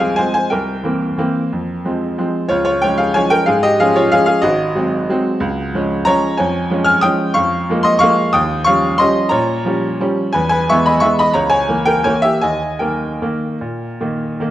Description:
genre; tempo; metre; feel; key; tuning
classical, piano waltz; 150-196 BPM; 3/4; rubato; unclear; A4 = 440 Hz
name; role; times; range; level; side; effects
bright baby grand piano; solo; 0.0-14.5 s; Ab1 to F6; -13 LUFS; equal; none
room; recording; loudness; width
wet recital hall reverb, RT60 1.5 s; worn, warbling old tape, cassette tape, warbly pitch drift; -13 LUFS; side -13 dB against mid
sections
0.0-14.5 A section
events
none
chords
0.0 Fm; 0.5 C7; 1.5 Fm; 2.5 Db; 4.4 Ab7; 5.4 Db; 6.4 Db/F; 7.3 Bbm7/F; 8.3 Eb9; 10.3 E; 11.4 Bbm7b5/Db; 12.4 Eb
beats
0.19 | 0.51 0.84 1.18 | 1.52 1.84 2.17 | 2.50 2.82 3.16 | 3.48 3.79 4.12 | 4.43 4.76 5.09 | 5.41 5.73 6.05 | 6.37 6.68 7.01 | 7.34 7.68 8.01 | 8.34 8.66 8.99 | 9.32 9.66 10.01 | 10.35 10.68 11.03 | 11.37 11.71 12.07 | 12.44 12.82 13.22 | 13.61 14.01 14.40

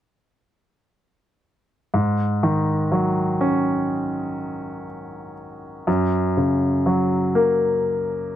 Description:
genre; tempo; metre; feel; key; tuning
pop; 61 BPM; 4/4; straight; unclear; A4 = 440 Hz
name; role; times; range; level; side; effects
clear concert grand piano; accompaniment; 1.9-8.4 s; Gb2 to Db4; -20 LUFS; equal; none
room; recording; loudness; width
light reverb; dry, close 1970s-style studio recording; -19 LUFS; side -12 dB against mid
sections
1.9-8.4 A section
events
none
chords
1.9 Ab7sus4; 5.9 Gb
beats
| 1.94 2.92 3.90 4.89 | 5.87 6.86 7.84

